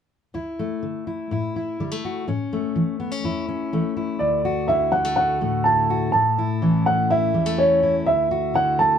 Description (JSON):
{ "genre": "folk", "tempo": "124 BPM", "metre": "4/4", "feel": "straight", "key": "D major", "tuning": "A4 = 441 Hz", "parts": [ { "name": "fingerpicked steel-string acoustic guitar", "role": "accompaniment", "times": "0.3-9.0 s", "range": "D2 to F#4", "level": "-23 LUFS", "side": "left 2 dB", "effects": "none" }, { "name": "dark upright piano", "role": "melody", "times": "4.2-9.0 s", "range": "C#5 to A5", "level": "-19 LUFS", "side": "right 2 dB", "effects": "none" } ], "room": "light reverb", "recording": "band playing live in one room", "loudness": "-19 LUFS", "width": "side -8 dB against mid", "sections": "0.3-4.2 A section; 4.2-9.0 B section", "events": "none", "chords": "0.3 Dsus2; 2.3 A; 4.2 Dadd9; 6.1 A; 8.1 Dadd9", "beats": "| 0.34 0.82 1.31 1.79 | 2.27 2.75 3.24 3.72 | 4.20 4.69 5.17 5.65 | 6.13 6.62 7.10 7.58 | 8.07 8.55" }